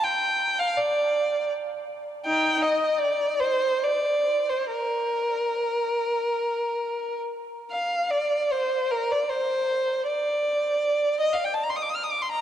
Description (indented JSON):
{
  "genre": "classical, free, expressive piece for unaccompanied violin",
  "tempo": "47-84 BPM",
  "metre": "3/4",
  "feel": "rubato",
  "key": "unclear",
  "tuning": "A4 = 441 Hz",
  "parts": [
    { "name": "rich violin", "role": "solo", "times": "0.0-12.4 s", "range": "Eb4 to F6", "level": "-23 LUFS", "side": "equal", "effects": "none" }
  ],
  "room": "wet cathedral reverb, RT60 4.8 s",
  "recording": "dark, warm production",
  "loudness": "-23 LUFS",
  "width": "side -10 dB against mid",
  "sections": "0.0-7.7 A section; 7.7-12.4 A section",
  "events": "none",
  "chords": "none",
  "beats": "| 0.02 0.75 1.50 | 2.25 2.99 3.82 | 4.71 5.71 6.67 | 7.71 8.50 9.29 | 10.06 10.82 11.56 | 12.31"
}